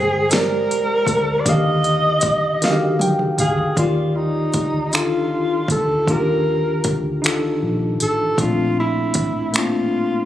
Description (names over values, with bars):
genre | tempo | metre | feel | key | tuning
slow six-eight R&B | 52 BPM (dotted quarters) | 6/8 | straight | Eb major, Eb lydian from 3.8 s | A4 = 439 Hz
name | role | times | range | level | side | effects
breathy tenor saxophone | melody | 0.0-10.3 s | Eb4 to Eb5 | -20 LUFS | equal | digital delay
tine electric piano | accompaniment | 0.0-10.3 s | Bb2 to G5 | -21 LUFS | left 1 dB | overdrive, fast stereo tremolo
vintage muted fingered electric bass | bass | 0.0-10.3 s | F1 to Eb2 | -26 LUFS | equal | none
smooth R&B drum kit | drums | 0.3-9.7 s | finger snaps, hi-hat, kick drum, snare drum, toms | -21 LUFS | equal | none
room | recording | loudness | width
light reverb, digital ambience | recorded on a phone in the room, club reverb, compression | -16 LUFS | side -12 dB against mid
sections
0.0-3.8 A section; 3.8-10.3 B section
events
drum fill 2.6-3.8; tine electric piano fill 2.6-3.8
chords
0.0 Abmaj9; 1.5 Ebmaj9; 8.4 Bbmaj9